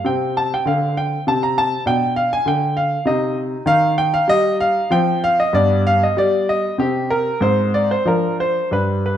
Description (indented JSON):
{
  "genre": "classical, baroque-style suite movement for grand piano",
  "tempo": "98 BPM",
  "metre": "3/4",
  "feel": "uneven beats, rubato",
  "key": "unclear",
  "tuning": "A4 = 438 Hz",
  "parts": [
    { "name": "clear grand piano", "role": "solo", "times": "0.0-9.2 s", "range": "G2 to Bb5", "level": "-16 LUFS", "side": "equal", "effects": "none" }
  ],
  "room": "moderate recital hall reverb, RT60 1.3 s",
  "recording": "dark, warm production",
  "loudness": "-16 LUFS",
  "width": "side -10 dB against mid",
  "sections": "0.0-9.2 A section",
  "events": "none",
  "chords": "0.0 Csus4; 1.9 Bdim; 3.1 Cm; 3.7 Eb; 4.9 F5; 5.5 G; 6.8 N.C.; 7.4 Ab; 8.1 Bbadd9/F"
}